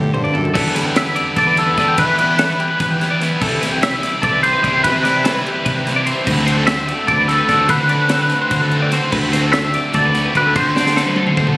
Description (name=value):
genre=math rock and midwest emo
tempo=294 BPM (eighths)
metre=7/8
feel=straight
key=unclear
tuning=A4 = 439 Hz
part: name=twangy electric guitar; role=accompaniment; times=0.0-2.0 s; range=F#2 to G4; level=-24 LUFS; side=right 1 dB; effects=none
part: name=twelve-string electric guitar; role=arpeggios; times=0.0-11.6 s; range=G4 to D5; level=-22 LUFS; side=left 1 dB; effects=none
part: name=fuzz fingered electric bass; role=bass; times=0.0-11.6 s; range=C2 to E3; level=-20 LUFS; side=equal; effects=overdrive
part: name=crisp fusion drum kit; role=drums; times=0.0-11.6 s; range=crash cymbal, kick drum, ride cymbal, snare drum, toms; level=-22 LUFS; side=equal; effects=none
part: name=cranked stack guitar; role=riff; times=0.5-11.6 s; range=C3 to F#4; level=-20 LUFS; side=equal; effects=overdrive
part: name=twangy electric guitar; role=melody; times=1.0-11.5 s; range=A4 to E5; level=-16 LUFS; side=equal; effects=analog chorus, slapback echo
room=little or no reverb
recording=recorded on a phone in the room, studio reverb, compression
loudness=-13 LUFS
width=side -20 dB against mid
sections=0.6-11.6 A section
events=drum fill 0.0-0.6, 10.8-11.6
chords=0.0 Gmaj9; 0.6 Em7; 3.4 Cmaj7; 6.3 D7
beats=0.14 0.35 | 0.55 0.76 0.96 1.17 1.37 1.58 1.78 | 1.99 2.19 2.40 2.60 2.80 3.01 3.21 | 3.42 3.62 3.83 4.03 4.23 4.44 4.64 | 4.85 5.05 5.25 5.46 5.66 5.87 6.07 | 6.28 6.48 6.68 6.89 7.09 7.29 7.50 | 7.70 7.91 8.11 8.31 8.52 8.72 8.93 | 9.13 9.33 9.54 9.74 9.95 10.15 10.35 | 10.56 10.76 10.97 11.17 11.38